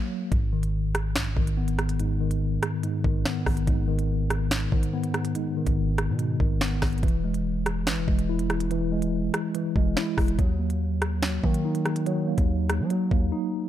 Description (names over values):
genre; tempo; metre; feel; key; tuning
hip hop, drill; 143 BPM; 4/4; half-time; G# minor; A4 = 441 Hz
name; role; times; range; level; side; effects
mellow tine electric piano; accompaniment; 0.0-13.7 s; G#2 to E4; -27 LUFS; equal; medium stereo tremolo, low-pass filter
long sustained 808-style bass; bass; 0.3-13.3 s; E1 to F#3; -28 LUFS; equal; none
drill drum kit; drums; 0.3-13.2 s; finger snaps, hi-hat, kick drum, rim click, snare drum; -26 LUFS; equal; none
room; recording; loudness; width
little or no reverb; dark, warm production; -23 LUFS; side -12 dB against mid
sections
0.3-13.7 A section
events
stop 0.0-0.3; break 13.3-13.7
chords
0.3 G#m; 7.0 E; 10.4 D#m